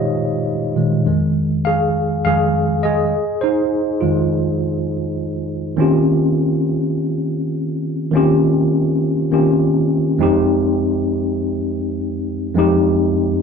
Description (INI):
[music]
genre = soul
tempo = 102 BPM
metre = 4/4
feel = straight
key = F minor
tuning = A4 = 442 Hz
[part]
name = tine electric piano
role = solo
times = 0.0-13.4 s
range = F2 to F5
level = -15 LUFS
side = equal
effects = overdrive, fast stereo tremolo
[sound]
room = moderate studio reverb, RT60 0.8 s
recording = band playing live in one room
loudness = -15 LUFS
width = side -6 dB against mid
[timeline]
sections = 0.0-5.8 A section; 5.8-13.4 B section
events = tine electric piano solo 0.0-5.8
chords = 0.0 Bb7sus4; 1.1 Fm7; 5.8 Eb13; 10.2 Fm7